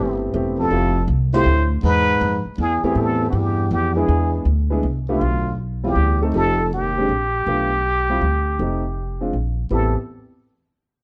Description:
jazz, small-group swing and bop; 160 BPM; 3/4; swing 66% on 8ths; A minor; A4 = 440 Hz
trumpet with plunger mute; melody; 0.0-10.0 s; E4 to C5; -24 LUFS; equal
mellow baritone saxophone; second line; 0.0-7.1, 9.7-9.9 s; C2 to A2; -27 LUFS; equal
warm upright piano; accompaniment; 0.0-9.9 s; G3 to A4; -26 LUFS; equal
upright bass; bass; 0.0-9.9 s; E1 to A2; -23 LUFS; equal
light reverb; dark, warm production; -20 LUFS; mono
0.0-5.2 A section; 5.2-9.7 B section; 9.7-10.8 C section
0.0 Am7; 0.7 Fmaj7; 1.8 E; 3.0 Am7; 4.1 E7; 5.2 Bdim; 6.0 D9sus4; 6.3 F9; 7.1 Gm/Bb; 7.5 Bm7b5; 8.2 Dsus4; 8.6 F9; 9.3 N.C.; 9.7 Am7

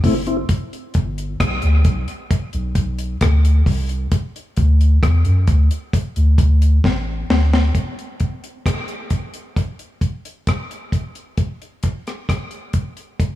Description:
dub reggae; 66 BPM; 4/4; straight; A4 = 440 Hz
soft dub sub bass; bass; 0.0-7.7 s; F#1 to F#2; -15 LUFS; equal
deep reggae drum kit; drums; 0.0-13.4 s; hi-hat, kick drum, rim click, snare drum; -20 LUFS; equal
small room ambience; echo-heavy mix; -17 LUFS; side -14 dB against mid
0.0-7.7 A section; 7.7-13.4 B section
drum fill 6.8-7.7

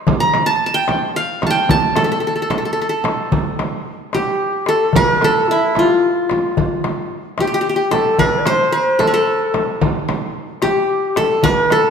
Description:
Arabic maqam ensemble; 74 BPM (dotted quarters); 6/8; straight; A maqam bayati from 3.3 s; A4 = 440 Hz
darbuka; percussion; 0.1-11.8 s; -23 LUFS; left 5 dB
frame drum; percussion; 0.1-11.8 s; -22 LUFS; right 4 dB
qanun; melody; 0.2-11.9 s; E4 to Bb5+25c; -16 LUFS; equal
breathy bright low ney; second line; 4.1-11.9 s; E4 to D5; -20 LUFS; left 1 dB
wet scoring stage reverb, RT60 1.7 s; -14 LUFS; side -6 dB against mid
0.0-3.3 A section; 3.3-11.9 B section

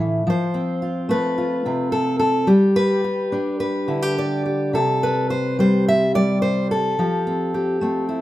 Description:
folk, solo fingerstyle acoustic guitar; 108 BPM; 4/4; rubato; C major; A4 = 440 Hz
fingerpicked steel-string acoustic guitar; solo; 0.0-8.2 s; A2 to E5; -18 LUFS; equal
light reverb; band playing live in one room; -18 LUFS; side -14 dB against mid
0.0-8.2 A section
0.3 F; 2.5 G; 4.7 C5; 7.0 Fadd9

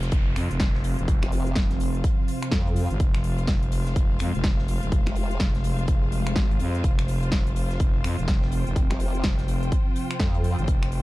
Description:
bass house; 125 BPM; 4/4; swing 60% on 16ths; F minor; A4 = 440 Hz
sweeping resonant pad; sustained chords; 0.0-11.0 s; C3 to C4; -34 LUFS; equal; chorus, sidechain pumping
growling FM bass; bass; 0.0-11.0 s; F1 to F2; -26 LUFS; equal; overdrive, sidechain pumping
big-room dance drum kit; drums; 0.0-11.0 s; finger snaps, hi-hat, snare drum; -32 LUFS; equal; overdrive
tight funk drum kit; drums; 0.0-11.0 s; hi-hat, snare drum; -44 LUFS; left 2 dB; high-pass filter on hats, high-pass filter on snare, high-pass filter on room
downlifter; sound effects; 0.0-3.0 s; -40 LUFS; equal
clear studio string section; texture; 0.0-11.0 s; F4 to G5; -36 LUFS; left 3 dB; sidechain pumping
electronic kick drum; drums; 0.1-10.8 s; -24 LUFS; equal
formant-sweep wobble bass; bass; 1.2-5.4, 8.9-10.6 s; F1 to F2; -25 LUFS; equal; chorus, sidechain pumping
studio reverb; dark, warm production; -21 LUFS; side -18 dB against mid
0.0-11.0 A section
0.0 F5

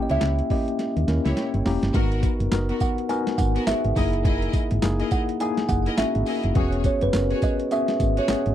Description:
R&B, new jack swing; 104 BPM; 4/4; swing 60% on 16ths; G# minor; A4 = 440 Hz
kalimba; melody; 0.0-8.5 s; B4 to G#5; -28 LUFS; right 2 dB; slapback echo
mellow tine electric piano; accompaniment; 0.0-8.5 s; A#3 to A#5; -26 LUFS; left 3 dB; medium stereo tremolo
clear studio string section; stabs; 0.1-8.3 s; B3 to D#5; -34 LUFS; equal; slapback echo
solid FM bass; bass; 0.1-8.5 s; E1 to D#2; -24 LUFS; equal
boom bap sampler-style drum kit; drums; 0.1-8.5 s; handclaps, hi-hat, kick drum, snare drum, tambourine; -25 LUFS; right 1 dB; overdrive
little or no reverb; dry, close 1970s-style studio recording; -20 LUFS; side -11 dB against mid
0.0-1.9 A section; 1.9-8.5 B section
drum fill 0.8-1.9; tine electric piano fill 1.1-1.9
0.0 D#7b9; 1.9 G#m9; 4.0 F#13; 6.6 E69

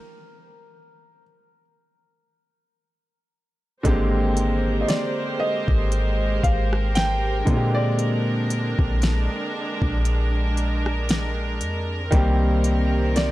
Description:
contemporary R&B; 58 BPM; 4/4; swing 54% on 16ths; A4 = 440 Hz
dark baby grand piano; melody; 0.0-13.3 s; Bb4 to G5; -29 LUFS; right 1 dB; tape echo
clear grand piano; accompaniment; 3.8-13.3 s; D3 to G4; -26 LUFS; equal
warm studio string section; sustained chords; 3.9-13.3 s; C3 to C5; -28 LUFS; right 2 dB
clean 808-style bass; bass; 3.9-13.3 s; Ab1 to Bb2; -22 LUFS; equal
smooth R&B drum kit; drums; 3.9-13.3 s; hi-hat, kick drum, rim click, snare drum; -24 LUFS; equal
small room ambience; dry, gritty hardware recording, transformer saturation; -20 LUFS; side -16 dB against mid
0.0-3.9 A section; 3.9-13.3 B section
stop 0.0-3.9
0.0 N.C.; 3.9 Abmaj9#11; 7.5 Bb13; 12.1 Cm7

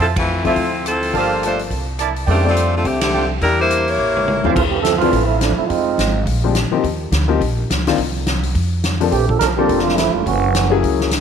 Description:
jazz, big band swing; 210 BPM; 4/4; swing 60% on 8ths; F major, D minor from 4.6 s; A4 = 439 Hz
edgy saxophone section; melody; 0.0-4.4 s; D3 to Db5; -18 LUFS; left 1 dB
clear trumpet section; stabs; 0.0-4.5 s; E4 to A5; -24 LUFS; right 9 dB
upright bass; bass; 0.0-11.2 s; E1 to F2; -21 LUFS; equal
swinging big-band drum kit; drums; 0.0-11.2 s; crash cymbal, hi-hat, kick drum, ride cymbal, rim click, snare drum, toms; -23 LUFS; left 1 dB
warm concert grand piano; accompaniment; 0.4-11.1 s; D2 to E5; -21 LUFS; left 9 dB
dark trombone section; second line; 4.5-6.2, 9.1-10.8 s; E3 to Bb4; -18 LUFS; right 9 dB
moderate echo chamber reverb, RT60 1.9 s, studio ambience; 1960s-style stereo with parts hard left and right; -15 LUFS; side -7 dB against mid
0.0-4.6 A section; 4.6-11.2 B section
band accent 0.1, 3.0; drum fill 4.0-4.6; trombone section solo 4.6-11.2
0.0 Fmaj7; 0.6 Dm9; 1.1 Gm9; 1.7 C13; 2.3 F69; 3.4 Em7b5; 4.0 A7b9; 4.6 Dm9; 5.7 Fm7; 6.3 Bb13; 6.8 Eb5; 8.0 N.C.; 8.6 F; 9.1 Bbmaj7; 10.3 F#9

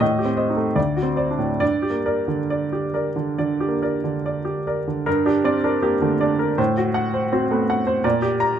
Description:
classical, romantic character piece for solo piano; 66-86 BPM; 4/4; rubato; G minor; A4 = 441 Hz
clear baby grand piano; solo; 0.0-8.6 s; D2 to Bb5; -19 LUFS; right 1 dB
light reverb; close, detailed microphones; -19 LUFS; side -9 dB against mid
0.0-5.1 A section; 5.1-8.6 A section
0.0 Am7b5; 0.8 D7; 1.6 Gm; 6.6 F#dim/A; 8.0 Gm/Bb

